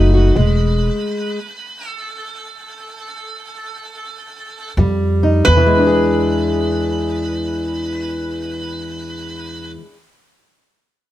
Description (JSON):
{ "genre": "acoustic country blues, solo or duo", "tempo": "free time", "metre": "none", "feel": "none", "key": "E mixolydian", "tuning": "A4 = 440 Hz", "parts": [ { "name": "metal-body resonator slide guitar", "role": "melody", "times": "0.0-9.7 s", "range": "B4", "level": "-24 LUFS", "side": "right 1 dB", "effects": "plate reverb" }, { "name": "fingerpicked steel-string acoustic guitar", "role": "accompaniment", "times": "0.0-10.0 s", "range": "E2 to G#4", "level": "-18 LUFS", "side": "left 1 dB", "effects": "none" }, { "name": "upright bass", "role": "bass", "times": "0.0-0.9, 4.8-9.7 s", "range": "E1 to F2", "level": "-17 LUFS", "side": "equal", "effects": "none" } ], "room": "light reverb", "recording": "none", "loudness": "-15 LUFS", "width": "side -14 dB against mid", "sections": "0.0-5.5 A section; 5.5-8.3 B section", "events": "slowing down 0.4-5.5; stop 0.4-4.8", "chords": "0.4 E; 4.8 Fsus2; 5.5 E7", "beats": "free time" }